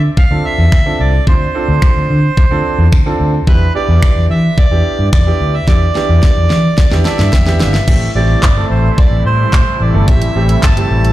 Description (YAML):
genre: dance-pop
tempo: 109 BPM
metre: 4/4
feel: straight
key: unclear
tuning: A4 = 442 Hz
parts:
  - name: accordion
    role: melody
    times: 0.0-11.1 s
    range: B4 to A5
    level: -19 LUFS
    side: right 2 dB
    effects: dub echo
  - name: vintage muted fingered electric bass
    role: bass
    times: 0.0-11.1 s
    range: G1 to E3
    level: -12 LUFS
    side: equal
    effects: sidechain pumping
  - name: pop drum kit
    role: drums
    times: 0.2-11.1 s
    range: crash cymbal, finger snaps, handclaps, hi-hat, kick drum, snare drum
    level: -11 LUFS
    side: equal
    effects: none
  - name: clear baby grand piano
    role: accompaniment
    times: 0.3-11.1 s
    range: A3 to A5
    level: -20 LUFS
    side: right 3 dB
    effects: sidechain pumping
  - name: filtered supersaw swell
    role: sustained chords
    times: 7.9-11.1 s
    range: C3 to E4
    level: -21 LUFS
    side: left 1 dB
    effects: sidechain pumping
room: digital ambience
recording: played on a big sound system in a bare room, stone room reverb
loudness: -9 LUFS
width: side -15 dB against mid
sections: 0.0-7.9 A section; 7.9-11.1 B section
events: drum fill 5.7-7.9; grand piano fill 6.8-7.9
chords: 0.0 Dm7; 3.5 Em7; 7.9 Am7